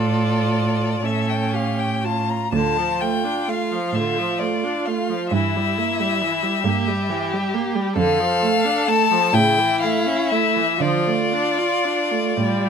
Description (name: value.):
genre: classical, slow romantic movement for string quartet.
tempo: 38-46 BPM (dotted quarters).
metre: 6/8.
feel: rubato.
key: D minor.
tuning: A4 = 442 Hz.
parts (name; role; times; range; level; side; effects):
rich violin; melody; 0.0-12.7 s; D5 to Bb5; -22 LUFS; left 6 dB; none.
dark violin; second line; 0.0-12.7 s; E4 to A4; -25 LUFS; equal; none.
clear viola; accompaniment; 0.0-12.7 s; C#3 to F4; -24 LUFS; right 4 dB; none.
clear cello; bass; 0.0-12.7 s; D2 to D3; -23 LUFS; right 4 dB; none.
room: light reverb.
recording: minimal, uncompressed stereo recording.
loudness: -18 LUFS.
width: side -7 dB against mid.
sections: 0.0-12.7 A section.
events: none.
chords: 0.0 Dm/A; 1.0 A; 2.5 Dm; 5.3 Edim/G; 8.0 Dm/F; 9.3 A; 10.8 Dm.